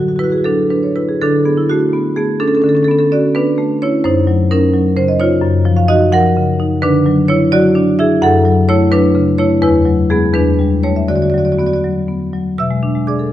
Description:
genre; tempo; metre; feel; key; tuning
classical, contemporary piece for solo marimba; 77-88 BPM (dotted quarters); 6/8; rubato; D lydian; A4 = 440 Hz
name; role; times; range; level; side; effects
marimba with medium hard mallets; solo; 0.0-13.3 s; E2 to E6; -11 LUFS; equal; none
room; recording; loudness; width
wet recital hall reverb, RT60 1.7 s; dark, warm production; -11 LUFS; side -12 dB against mid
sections
0.0-1.2 A section; 1.2-12.6 B section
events
none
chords
0.0 Dadd9; 2.6 Bm9/D; 4.1 F#6; 5.4 Ebm9/Gb; 6.8 D69; 8.2 F#m7; 9.6 Eadd9; 10.3 Em7; 11.1 D6; 12.6 Bm6

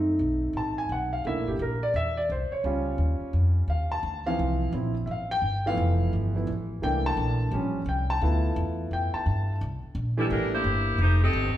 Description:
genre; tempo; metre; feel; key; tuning
jazz, big band swing; 172 BPM; 4/4; swing 63% on 8ths; unclear; A4 = 439 Hz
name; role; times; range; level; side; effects
warm concert grand piano; accompaniment; 0.0-10.6 s; E3 to A5; -28 LUFS; equal; none
upright bass; bass; 0.0-11.6 s; F1 to G2; -27 LUFS; equal; none
warm saxophone section; melody; 10.2-11.5 s; G3 to Eb5; -26 LUFS; left 1 dB; none
room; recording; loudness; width
wet large studio reverb, RT60 1.4 s; heard from further back in the room; -24 LUFS; side -12 dB against mid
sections
0.0-9.6 A section; 9.6-11.6 B section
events
grand piano solo 0.0-9.6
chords
0.0 F#dim7; 1.2 C13; 2.6 Eb9/Db; 4.0 Dm7; 5.4 G13; 6.8 C13; 7.5 A7alt; 8.2 G13; 9.6 C13; 11.0 F9

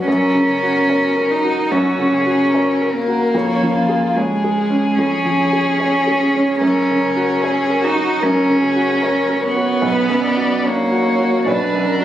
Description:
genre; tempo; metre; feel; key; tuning
neoclassical piano and strings; 74 BPM; 4/4; rubato; F# major; A4 = 440 Hz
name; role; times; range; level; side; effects
warm cello; second line; 0.0-12.0 s; G#3 to D#4; -17 LUFS; right 2 dB; none
felt-muted upright piano; accompaniment; 0.0-12.0 s; B1 to C#5; -20 LUFS; equal; none
deep dark ambient pad; sustained chords; 0.0-12.0 s; C#4 to F#5; -27 LUFS; left 3 dB; none
dark violin; melody; 0.1-12.0 s; E#4 to D5; -21 LUFS; left 3 dB; none
room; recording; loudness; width
light reverb; recorded on a phone in the room, club reverb, compression; -14 LUFS; side -12 dB against mid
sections
0.1-12.0 A section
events
none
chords
0.1 F#; 3.3 C#/E#; 6.6 F#; 9.8 Bm

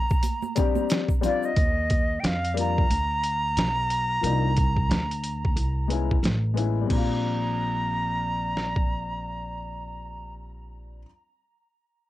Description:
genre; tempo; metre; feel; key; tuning
hip hop, jazz-hop; 90 BPM; 4/4; swing 59% on 16ths; Bb major; A4 = 440 Hz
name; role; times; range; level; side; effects
bright reedy silver concert flute; melody; 0.0-10.3 s; D5 to Bb5; -28 LUFS; right 1 dB; cassette tape, tape echo
boom bap sampler-style drum kit; drums; 0.1-8.9 s; crash cymbal, hi-hat, kick drum, snare drum; -25 LUFS; equal; none
egg shaker and congas; percussion; 0.1-1.6 s; none; -35 LUFS; right 11 dB; none
dark upright piano; accompaniment; 0.6-11.1 s; F3 to G4; -29 LUFS; left 7 dB; cassette tape
upright bass; bass; 1.6-11.0 s; A1 to F2; -28 LUFS; equal; none
room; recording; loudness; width
light reverb; home recording on cassette; -22 LUFS; side -15 dB against mid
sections
0.0-1.6 A section; 1.6-6.9 B section; 6.9-9.6 C section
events
break 0.0-1.6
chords
0.0 Bb6; 1.6 Ebmaj7sus2; 4.2 Cm11; 6.2 Amaj7; 6.9 Bb6

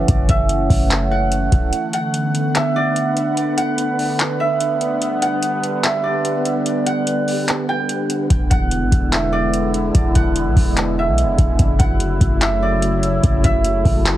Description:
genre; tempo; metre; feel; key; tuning
hip hop, atmospheric cloud-rap; 146 BPM; 4/4; half-time; F# minor; A4 = 445 Hz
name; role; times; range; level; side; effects
concert harp; melody; 0.0-14.2 s; D5 to G5; -22 LUFS; right 3 dB; digital delay
sweeping resonant pad; sustained chords; 0.0-14.2 s; C#3 to F#5; -21 LUFS; equal; chorus, phaser, sidechain pumping
clean 808-style bass; bass; 0.0-1.7, 8.3-14.2 s; D1 to B1; -18 LUFS; equal; none
booming analog drum machine; drums; 0.1-14.2 s; handclaps, hi-hat, kick drum; -19 LUFS; equal; vintage 12-bit sampler grit
wind-like tuned noise texture; texture; 2.2-14.2 s; A3 to F#5; -29 LUFS; equal; built-in reverb
room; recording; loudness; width
little or no reverb; heavily compressed radio sound; -15 LUFS; side -13 dB against mid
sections
0.0-14.2 A section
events
break 1.7-8.3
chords
0.0 F#m7; 1.7 D6; 5.0 Gmaj7; 8.3 E7; 11.6 F#m7

